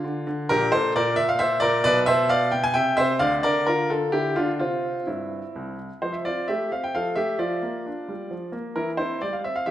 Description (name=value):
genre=classical-period piano sonatina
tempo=131 BPM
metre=3/4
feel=straight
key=F major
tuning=A4 = 440 Hz
part: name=clear baby grand piano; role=solo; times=0.0-9.7 s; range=Bb1 to G#5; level=-21 LUFS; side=equal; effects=none
room=wet recital hall reverb, RT60 1.9 s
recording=none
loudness=-21 LUFS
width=side -12 dB against mid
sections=0.0-6.0 A section; 6.0-9.7 B section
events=none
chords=0.5 Gm/Bb; 1.8 Bdim7; 2.8 C; 3.2 Dm; 4.6 C; 6.0 F; 7.4 Gm7/F; 8.8 C/E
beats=0.05 | 0.50 0.94 1.40 | 1.85 2.30 2.75 | 3.21 3.67 4.13 | 4.60 5.08 5.55 | 6.02 6.48 6.94 | 7.39 7.85 8.30 | 8.76 9.21 9.66